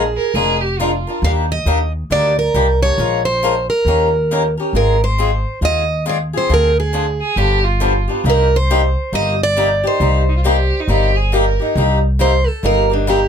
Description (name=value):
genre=acoustic string swing (jazz manouche)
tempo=137 BPM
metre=4/4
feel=swing 62% on 8ths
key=C minor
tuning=A4 = 440 Hz
part: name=picked plugged-in steel-string acoustic guitar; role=melody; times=0.0-13.3 s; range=D4 to F5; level=-17 LUFS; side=right 2 dB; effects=none
part: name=picked swing-style acoustic guitar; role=accompaniment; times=0.0-13.2 s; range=C3 to Bb4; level=-18 LUFS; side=left 3 dB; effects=none
part: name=upright bass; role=bass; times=0.0-13.3 s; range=F1 to Eb2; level=-18 LUFS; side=equal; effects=none
part: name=clear violin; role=second line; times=0.2-1.1, 7.2-11.8 s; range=Eb4 to Bb4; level=-20 LUFS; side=right 3 dB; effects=none
room=little or no reverb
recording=close, detailed microphones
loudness=-13 LUFS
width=side -7 dB against mid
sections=0.0-11.8 A section; 11.8-13.3 B section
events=steel-string acoustic guitar solo 11.8-13.3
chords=0.0 Bb7; 1.2 Ebmaj7; 3.0 Bbm7; 3.9 Eb7; 4.7 Ab6; 6.5 Dm7b5; 7.4 G7; 8.2 Cm7